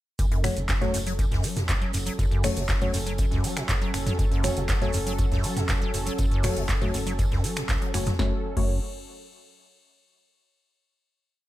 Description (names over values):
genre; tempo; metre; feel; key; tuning
acid house; 120 BPM; 4/4; straight; F# minor; A4 = 439 Hz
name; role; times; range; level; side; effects
warm analog pad; sustained chords; 0.2-8.4 s; F#3 to A4; -34 LUFS; right 1 dB; chorus, sidechain pumping
acid bass, square; riff; 0.2-8.8 s; F#2 to F#3; -30 LUFS; equal; tube saturation, analog chorus, cassette tape, dub echo
round analog bass; bass; 0.2-8.8 s; F#1 to C#2; -32 LUFS; equal; sidechain pumping
electro analog drum machine; drums; 0.2-8.7 s; crash cymbal, finger snaps, handclaps, hi-hat, snare drum, toms; -31 LUFS; right 1 dB; none
electronic kick drum; drums; 0.2-8.7 s; none; -27 LUFS; equal; overdrive
street-band drum kit; drums; 0.2-8.2 s; hi-hat, snare drum, tambourine; -40 LUFS; left 1 dB; sidechain pumping on hats, high-pass filter on hats, high-pass filter on snare, sidechain pumping on perc, high-pass filter on perc, high-pass filter on room
maracas; percussion; 0.2-8.2 s; none; -39 LUFS; right 6 dB; none
deep mellow chord stab; stabs; 0.4-8.8 s; A3 to C#5; -32 LUFS; left 3 dB; chorus, cassette tape, dub echo
room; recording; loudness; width
small room ambience; none; -23 LUFS; side -15 dB against mid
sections
0.2-8.2 drop; 8.2-10.2 final chord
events
drop 0.2-8.2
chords
0.2 F#m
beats
| 0.19 0.69 1.19 1.69 | 2.19 2.69 3.19 3.69 | 4.19 4.69 5.19 5.69 | 6.19 6.69 7.19 7.69 | 8.19 8.69